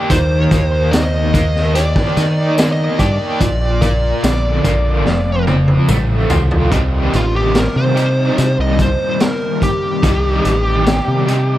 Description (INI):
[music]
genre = psychedelic rock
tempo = 72 BPM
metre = 4/4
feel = straight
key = C dorian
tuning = A4 = 440 Hz
[part]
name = overdriven semi-hollow guitar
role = riff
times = 0.0-11.6 s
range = F2 to G4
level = -19 LUFS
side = equal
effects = tremolo, dub echo
[part]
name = fuzz lead guitar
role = melody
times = 0.1-11.6 s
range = F4 to Eb5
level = -20 LUFS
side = equal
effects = distortion, dub echo
[part]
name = picked electric bass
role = bass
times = 0.1-11.6 s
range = F1 to Eb3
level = -16 LUFS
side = equal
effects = none
[part]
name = raw garage drum kit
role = drums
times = 0.1-11.5 s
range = hi-hat, kick drum, snare drum, toms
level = -18 LUFS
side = equal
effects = none
[part]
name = tambourine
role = percussion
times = 0.1-6.5 s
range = none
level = -34 LUFS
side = left 3 dB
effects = none
[sound]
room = studio reverb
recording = echo-heavy mix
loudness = -12 LUFS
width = side -14 dB against mid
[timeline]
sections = 0.0-6.7 A section; 6.7-11.6 B section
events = drum fill 5.1-6.7; lead electric guitar solo 6.7-11.6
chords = 0.1 Eb; 3.4 Bb; 5.1 F; 6.7 Cm